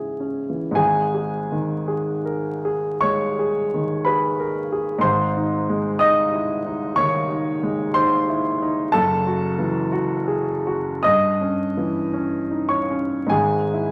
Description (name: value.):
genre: classical, romantic nocturne for solo piano.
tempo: 48-62 BPM.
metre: 4/4.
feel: rubato.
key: unclear.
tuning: A4 = 438 Hz.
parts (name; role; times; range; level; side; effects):
warm grand piano; solo; 0.0-13.9 s; F#1 to D#6; -22 LUFS; equal; none.
room: moderate large studio reverb, RT60 1.1 s.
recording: vinyl crackle.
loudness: -22 LUFS.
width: mono.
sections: 0.8-13.9 A section.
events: none.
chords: 0.0 C#m; 0.8 G#m; 5.0 G#; 8.9 F#m7; 11.1 D#7b9/G; 13.3 E/G#.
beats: | 0.78 1.87 3.03 4.06 | 5.04 6.01 6.98 7.96 | 8.94 9.92 11.05 12.13 | 13.31.